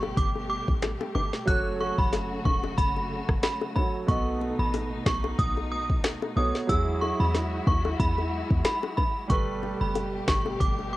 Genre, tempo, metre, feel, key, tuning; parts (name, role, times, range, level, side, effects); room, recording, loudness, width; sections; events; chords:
dancehall; 92 BPM; 4/4; swing 56% on 16ths; A4 = 439 Hz
warm baby grand piano; accompaniment; 0.0-11.0 s; F#3 to D#5; -33 LUFS; right 3 dB; cassette tape
warm studio string section; sustained chords; 0.0-11.0 s; B2 to G4; -36 LUFS; left 2 dB; sidechain pumping, cassette tape
short 808-style bass; bass; 0.0-11.0 s; E1 to E2; -30 LUFS; equal
bongos; percussion; 0.0-10.9 s; -33 LUFS; left 5 dB
synth chime; melody; 0.2-11.0 s; B5 to F#6; -31 LUFS; right 1 dB; ensemble chorus, cassette tape, analog delay
afro-pop drum kit; drums; 0.2-10.8 s; finger snaps, hi-hat, kick drum, rim click, snare drum; -27 LUFS; equal; cassette tape
studio ambience; home recording on cassette; -24 LUFS; side -17 dB against mid
0.0-11.0 A section
0.0 Gadd9; 1.5 F#m; 4.1 B7; 6.7 Eadd9; 9.3 Gadd9